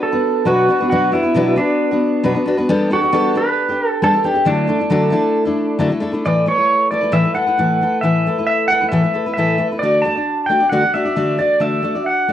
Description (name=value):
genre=rock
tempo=134 BPM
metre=4/4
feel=straight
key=unclear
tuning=A4 = 443 Hz
part: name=pedal steel guitar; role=melody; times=0.0-12.3 s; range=D4 to A5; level=-16 LUFS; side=right 1 dB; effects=plate reverb
part: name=picked steel-string acoustic guitar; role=accompaniment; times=0.0-12.3 s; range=A2 to D5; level=-17 LUFS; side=left 2 dB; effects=none
room=moderate studio reverb, RT60 0.6 s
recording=home recording on cassette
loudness=-14 LUFS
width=side -11 dB against mid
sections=0.0-6.2 A section; 6.2-12.3 B section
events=none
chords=0.0 Bm; 2.7 Gadd9; 4.5 Dadd9; 6.2 Asus2; 9.8 D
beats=0.01 0.46 | 0.90 1.35 1.79 2.24 | 2.68 3.13 3.57 4.02 | 4.46 4.91 5.36 5.80 | 6.25 6.70 7.14 7.59 | 8.04 8.48 8.93 9.38 | 9.83 10.28 10.72 11.17 | 11.62 12.06